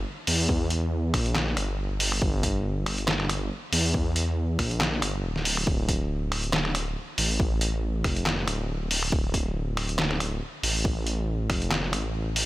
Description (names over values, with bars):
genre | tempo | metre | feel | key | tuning
deep dubstep | 139 BPM | 4/4 | swing 55% on 16ths, half-time | D minor | A4 = 439 Hz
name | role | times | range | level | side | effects
dark detuned saw bass | bass | 0.0-12.5 s | D1 to E2 | -27 LUFS | equal | none
trip hop sampler-style drum kit | drums | 0.3-12.5 s | finger snaps, handclaps, hi-hat, snare drum | -28 LUFS | equal | studio reverb
electronic kick drum | drums | 0.5-11.6 s | none | -27 LUFS | equal | overdrive, studio reverb
room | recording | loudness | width
little or no reverb | none | -24 LUFS | side -17 dB against mid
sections
0.0-12.5 A section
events
none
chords
none